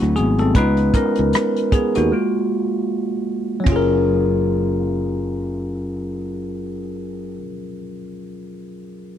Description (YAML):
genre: R&B, neo-soul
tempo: 77 BPM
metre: 4/4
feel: swing 58% on 16ths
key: F# major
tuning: A4 = 440 Hz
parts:
  - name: bell-like tine electric piano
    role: accompaniment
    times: 0.0-9.2 s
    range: F#3 to B4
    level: -20 LUFS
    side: left 1 dB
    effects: phaser
  - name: sustaining fretless electric bass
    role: bass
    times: 0.0-7.4 s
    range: F#1 to D#2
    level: -23 LUFS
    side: equal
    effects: wide subtle chorus
  - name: unplugged drum kit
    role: drums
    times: 0.0-3.9 s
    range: hi-hat, kick drum, ride cymbal, rim click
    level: -20 LUFS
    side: equal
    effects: none
room: little or no reverb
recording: dry, close 1970s-style studio recording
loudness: -17 LUFS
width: side -10 dB against mid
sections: 0.0-3.7 A section; 3.7-6.8 B section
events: tine electric piano solo 0.0-3.7; break 2.1-3.7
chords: 0.0 D9; 0.5 C#13; 2.1 F#maj9